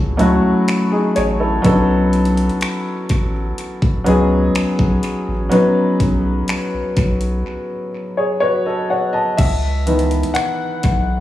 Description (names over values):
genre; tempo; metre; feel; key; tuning
contemporary R&B; 62 BPM; 4/4; straight; unclear; A4 = 440 Hz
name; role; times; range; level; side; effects
warm concert grand piano; accompaniment; 0.0-11.2 s; D#3 to A5; -16 LUFS; left 1 dB; none
round analog bass; bass; 0.0-11.2 s; A1 to C#2; -20 LUFS; equal; none
trap drum kit; drums; 0.2-11.1 s; crash cymbal, finger snaps, hi-hat, kick drum; -20 LUFS; equal; tape echo
room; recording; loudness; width
light reverb; echo-heavy mix, studio reverb; -15 LUFS; side -13 dB against mid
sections
0.0-9.4 A section; 9.4-11.2 B section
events
break 7.5-9.4; grand piano solo 9.4-11.2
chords
0.0 F#m9; 1.6 B7; 9.4 C#m7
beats
0.68 | 1.65 2.61 3.58 4.55 | 5.52 6.49 7.45 8.42 | 9.39 10.36